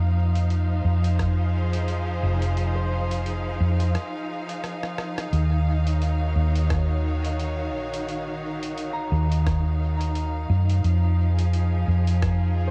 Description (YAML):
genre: ambient dub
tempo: 87 BPM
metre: 4/4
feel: swing 57% on 16ths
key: Eb dorian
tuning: A4 = 440 Hz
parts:
  - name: rich studio string section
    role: sustained chords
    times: 0.0-12.7 s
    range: Eb3 to F5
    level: -33 LUFS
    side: equal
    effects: none
  - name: Celtic harp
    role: arpeggios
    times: 0.0-12.7 s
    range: Bb3 to Bb5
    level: -41 LUFS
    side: equal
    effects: analog delay
  - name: hollow-body short-scale fingered electric bass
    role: bass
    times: 0.0-12.7 s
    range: F1 to Gb2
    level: -24 LUFS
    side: equal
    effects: none
  - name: wind-like tuned noise texture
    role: texture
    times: 0.0-5.3 s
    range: F5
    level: -47 LUFS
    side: equal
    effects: none
  - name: lo-fi sampler-style drum kit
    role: drums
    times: 0.4-12.4 s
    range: hi-hat, rim click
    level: -40 LUFS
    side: equal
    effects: studio reverb, dub echo
  - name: electronic kick drum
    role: drums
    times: 1.2-1.3, 6.7-12.4 s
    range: none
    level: -31 LUFS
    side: equal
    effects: studio reverb
room: little or no reverb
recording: echo-heavy mix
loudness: -24 LUFS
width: mono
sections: 0.0-5.3 A section; 5.3-12.7 B section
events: break 4.0-5.3; drum fill 4.6-5.3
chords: 0.0 Fm7; 5.3 Ebm7; 10.8 Fm7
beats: 0.50 1.19 1.88 | 2.57 3.26 3.95 4.64 | 5.33 6.02 6.71 7.40 | 8.09 8.78 9.47 10.16 | 10.85 11.54 12.23